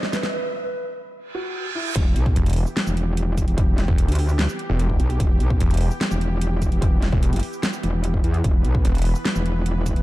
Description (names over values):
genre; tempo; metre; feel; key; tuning
heavy wobble dubstep; 148 BPM; 4/4; half-time; E minor; A4 = 441 Hz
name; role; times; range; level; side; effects
felt-muted upright piano; melody; 0.0-1.9 s; E4 to B4; -30 LUFS; equal; digital delay
supersaw pad; sustained chords; 0.0-10.0 s; E3 to C5; -34 LUFS; equal; sidechain pumping
dubstep drum kit; drums; 0.0-10.0 s; crash cymbal, hi-hat, shaker, snare drum; -28 LUFS; equal; none
riser and reverse cymbal; sound effects; 0.0-2.0 s; none; -31 LUFS; right 4 dB; none
metallic wobble bass; bass; 2.0-10.0 s; E1 to E2; -21 LUFS; equal; chorus, overdrive
electronic kick drum; drums; 2.0-9.9 s; none; -20 LUFS; equal; none
snarling distorted saw bass; bass; 2.4-9.1 s; E1; -20 LUFS; equal; distortion, overdrive
room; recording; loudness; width
little or no reverb; dark, warm production; -19 LUFS; side -16 dB against mid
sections
0.0-2.0 A section; 2.0-10.0 B section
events
build-up 0.0-2.0; drum fill 0.0-0.3; riser 0.0-0.3; break 0.3-2.0; reverse cymbal 1.3-2.0; drop 2.0-10.0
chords
0.3 N.C.; 2.0 Em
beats
| 0.33 0.74 1.15 1.55 | 1.96 2.36 2.77 3.17 | 3.58 3.98 4.39 4.79 | 5.20 5.60 6.01 6.42 | 6.82 7.23 7.63 8.04 | 8.44 8.85 9.25 9.66